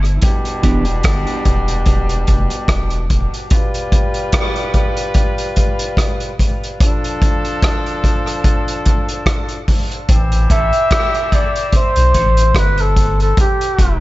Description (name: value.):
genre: dub reggae.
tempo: 73 BPM.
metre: 4/4.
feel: swing 55% on 16ths.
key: A minor.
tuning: A4 = 440 Hz.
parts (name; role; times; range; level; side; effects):
mellow electric guitar; accompaniment; 0.0-0.8, 10.5-14.0 s; E3 to A4; -26 LUFS; right 3 dB; spring reverb, high-pass filter, dub echo.
soft dub sub bass; bass; 0.0-3.3, 10.1-14.0 s; E1 to B1; -16 LUFS; equal; none.
vintage drum kit; drums; 0.0-14.0 s; hi-hat, kick drum, rim click; -16 LUFS; equal; none.
warm horn section; second line; 0.2-12.9 s; B2 to B4; -22 LUFS; left 1 dB; high-pass filter, dub echo.
warm flugelhorn; melody; 10.5-14.0 s; G4 to E5; -16 LUFS; equal; dub echo.
room: small room ambience.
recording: nothing above 7.8 kHz.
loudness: -13 LUFS.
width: side -18 dB against mid.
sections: 0.0-14.0 A section.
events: break 0.0-10.1; filter sweep 6.8-14.0.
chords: 0.2 Em7; 3.5 G7; 6.8 Dm; 10.1 Am7; 13.4 Em7.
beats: | 0.22 1.04 1.87 2.69 | 3.51 4.33 5.16 5.98 | 6.80 7.62 8.44 9.27 | 10.09 10.91 11.73 12.55 | 13.37.